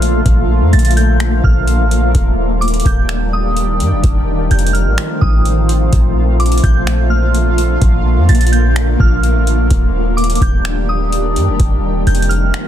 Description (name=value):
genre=hip hop, atmospheric cloud-rap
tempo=127 BPM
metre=4/4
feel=half-time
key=Bb major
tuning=A4 = 441 Hz
part: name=soft synth bell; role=melody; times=0.0-12.7 s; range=D6 to A6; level=-22 LUFS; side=right 2 dB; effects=chorus, ping-pong delay
part: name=shimmering ambient pad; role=sustained chords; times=0.0-12.7 s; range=D3 to G4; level=-18 LUFS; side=equal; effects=chorus, built-in reverb, sidechain pumping
part: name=clean 808-style bass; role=bass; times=0.0-12.5 s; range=Eb1 to G2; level=-13 LUFS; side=equal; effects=none
part: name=booming analog drum machine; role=drums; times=0.0-12.7 s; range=finger snaps, hi-hat, kick drum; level=-16 LUFS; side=equal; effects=soft clipping on snare
room=little or no reverb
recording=dense, heavily limited modern master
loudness=-11 LUFS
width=side -11 dB against mid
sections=0.0-12.7 A section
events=none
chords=0.0 Bbmaj7; 2.1 Ebmaj7; 4.0 F7; 5.9 Bbmaj7; 9.7 Ebmaj7; 11.6 F7